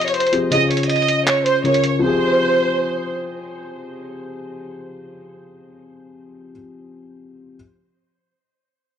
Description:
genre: hip hop, trap.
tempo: 159 BPM.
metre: 4/4.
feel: half-time.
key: F minor.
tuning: A4 = 439 Hz.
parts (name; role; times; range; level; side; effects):
warm studio violin section; melody; 0.0-3.1 s; C5 to Eb5; -18 LUFS; right 2 dB; none.
dark concert grand piano; accompaniment; 0.0-7.6 s; Db3 to Bb4; -23 LUFS; left 3 dB; none.
lo-fi sampler-style drum kit; drums; 0.0-1.9 s; handclaps, hi-hat; -24 LUFS; right 1 dB; none.
room: light reverb, small room reverb.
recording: dry, gritty hardware recording, cassette tape.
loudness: -15 LUFS.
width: side -8 dB against mid.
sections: 0.0-2.0 A section; 2.0-5.0 B section.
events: none.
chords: 0.0 Fmadd9; 0.5 Db; 2.0 Fmadd9.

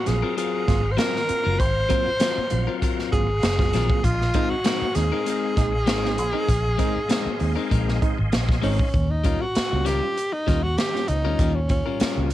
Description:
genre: funk.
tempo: 98 BPM.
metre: 4/4.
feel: straight.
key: unclear.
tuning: A4 = 441 Hz.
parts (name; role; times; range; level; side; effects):
breathy tenor saxophone; melody; 0.0-12.3 s; Db4 to C5; -26 LUFS; equal; cassette tape.
percussive tonewheel organ; sustained chords; 0.0-8.9 s; Eb5 to C6; -35 LUFS; equal; chorus vibrato, fast rotary speaker, cassette tape.
clean electric guitar; accompaniment; 0.1-12.3 s; Gb3 to Bb4; -28 LUFS; left 10 dB; cassette tape.
barky reed electric piano; stabs; 0.1-12.3 s; Ab2 to F4; -32 LUFS; right 10 dB; overdrive, fast tremolo, cassette tape.
vintage muted fingered electric bass; bass; 0.1-12.3 s; Gb1 to Eb2; -24 LUFS; equal; none.
swinging big-band drum kit; drums; 0.1-12.3 s; hi-hat, kick drum, snare drum; -25 LUFS; equal; none.
room: little or no reverb.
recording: home recording on cassette.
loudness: -20 LUFS.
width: side -14 dB against mid.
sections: 0.0-8.9 A section; 8.9-12.3 B section.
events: none.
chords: 0.0 Ab13; 4.0 Bb9sus4; 8.9 Eb9.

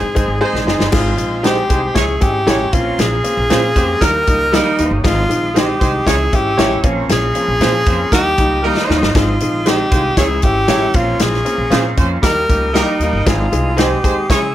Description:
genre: uptempo 1960s-style soul.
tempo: 117 BPM.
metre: 4/4.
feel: straight.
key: Ab major.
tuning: A4 = 436 Hz.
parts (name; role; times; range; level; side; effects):
breathy tenor saxophone; melody; 0.0-14.5 s; Eb4 to Bb4; -18 LUFS; equal; none.
clear baby grand piano; accompaniment; 0.0-14.5 s; Eb3 to Bb4; -20 LUFS; left 2 dB; none.
tonewheel organ; sustained chords; 0.0-14.5 s; C5 to Fb6; -28 LUFS; equal; overdrive, slow rotary speaker.
upright bass; bass; 0.0-14.5 s; Gb1 to Db3; -21 LUFS; equal; none.
warm horn section; second line; 0.2-14.4 s; F3 to Db5; -22 LUFS; right 4 dB; none.
natural country drum kit; drums; 0.2-14.4 s; crash cymbal, hi-hat, kick drum, snare drum; -17 LUFS; equal; none.
electric guitar through a small old amp; stabs; 0.4-13.9 s; Db4 to Fb5; -23 LUFS; right 7 dB; ensemble chorus.
room: light reverb, small room ambience.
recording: none.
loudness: -12 LUFS.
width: side -13 dB against mid.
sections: 0.9-14.5 A section.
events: band accent 0.0-0.9; drum fill 0.4-0.9, 8.6-9.2.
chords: 0.0 Ab; 2.0 Dbm; 2.7 Bbmadd9; 4.0 Eb; 5.0 Ab; 6.1 Dbm; 6.8 Bbmadd9; 8.1 Eb; 9.2 Ab; 10.2 Dbm; 11.0 Bbmadd9; 12.2 Eb; 13.3 Ab.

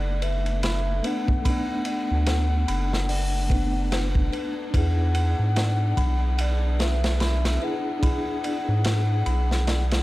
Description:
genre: trip hop.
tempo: 73 BPM.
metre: 4/4.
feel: swing 59% on 16ths.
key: B dorian.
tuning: A4 = 445 Hz.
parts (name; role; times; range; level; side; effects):
mellow hollow baroque flute; melody; 0.0-10.0 s; D5 to F#5; -32 LUFS; left 3 dB; tape echo.
mellow reed electric piano; accompaniment; 0.0-10.0 s; A3 to G#4; -32 LUFS; equal; fast tremolo, harmonic tremolo, tape echo.
warm studio string section; sustained chords; 0.0-10.0 s; E3 to G#4; -36 LUFS; left 3 dB; none.
music box; arpeggios; 0.0-10.0 s; G#4 to B5; -37 LUFS; left 2 dB; vintage 12-bit sampler grit, digital delay.
round analog bass; bass; 0.0-10.0 s; F#1 to G#2; -23 LUFS; equal; none.
crunchy breakbeat drum kit; drums; 0.2-10.0 s; hi-hat, kick drum, ride cymbal, snare drum; -28 LUFS; equal; none.
room: small room ambience.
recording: faint mains hum.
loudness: -21 LUFS.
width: side -17 dB against mid.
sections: 0.0-10.0 A section.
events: none.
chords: 0.0 Bm7; 4.7 E7.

